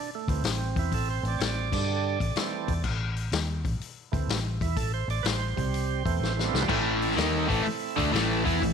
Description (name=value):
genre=blues rock power trio and southern rock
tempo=125 BPM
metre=4/4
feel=swing 67% on 8ths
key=A minor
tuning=A4 = 441 Hz
part: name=overdriven tonewheel organ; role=sustained chords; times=0.0-8.7 s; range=C3 to D5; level=-32 LUFS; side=right 10 dB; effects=slow rotary speaker
part: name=vintage muted fingered electric bass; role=bass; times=0.3-8.7 s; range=A1 to G2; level=-29 LUFS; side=equal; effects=none
part: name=vintage drum kit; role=drums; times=0.3-8.7 s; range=crash cymbal, hi-hat, kick drum, snare drum, toms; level=-31 LUFS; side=left 5 dB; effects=none
part: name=cranked stack guitar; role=riff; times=6.7-8.7 s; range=A2 to E4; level=-25 LUFS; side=left 1 dB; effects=overdrive
room=light reverb, small room ambience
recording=1960s-style stereo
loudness=-25 LUFS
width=side -6 dB against mid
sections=0.0-6.7 A section; 6.7-8.7 B section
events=tonewheel organ solo 0.0-6.7; drum fill 6.2-6.7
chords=0.0 Am; 1.6 G5; 2.1 Am; 5.5 C5; 6.0 Am